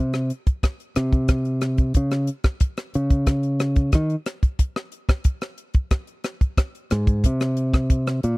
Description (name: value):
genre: electric jazz fusion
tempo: 91 BPM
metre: 4/4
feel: straight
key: unclear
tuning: A4 = 440 Hz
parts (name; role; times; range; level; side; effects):
- modern bright fingered electric bass; bass; 0.0-8.4 s; Ab2 to Eb3; -21 LUFS; equal; none
- tight funk drum kit; drums; 0.1-8.4 s; hi-hat, kick drum, rim click; -19 LUFS; equal; none
room: little or no reverb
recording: dry, close 1970s-style studio recording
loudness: -20 LUFS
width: side -24 dB against mid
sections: 0.0-8.4 A section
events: fingered electric bass solo 0.0-8.4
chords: none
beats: 0.64 1.30 | 1.96 2.62 3.28 3.94 | 4.60 5.26 5.92 6.58 | 7.24 7.91